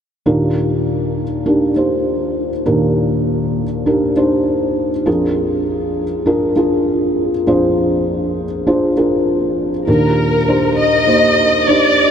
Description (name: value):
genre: pop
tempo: 100 BPM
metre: 4/4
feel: swing 56% on 16ths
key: Eb major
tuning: A4 = 439 Hz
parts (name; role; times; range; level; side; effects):
- felt-muted upright piano; accompaniment; 0.3-12.1 s; Bb1 to C5; -14 LUFS; equal; none
- warm studio violin section; melody; 9.9-12.1 s; Bb4 to Eb5; -13 LUFS; left 1 dB; ping-pong delay
room: wet huge ambient reverb, RT60 7.9 s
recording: dreamy mix soaked in reverb, nothing above 10.5 kHz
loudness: -13 LUFS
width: side -8 dB against mid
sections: 0.3-9.9 A section; 9.9-12.1 B section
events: none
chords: 0.3 Ebmaj7; 5.1 Bb7; 9.9 Ebmaj7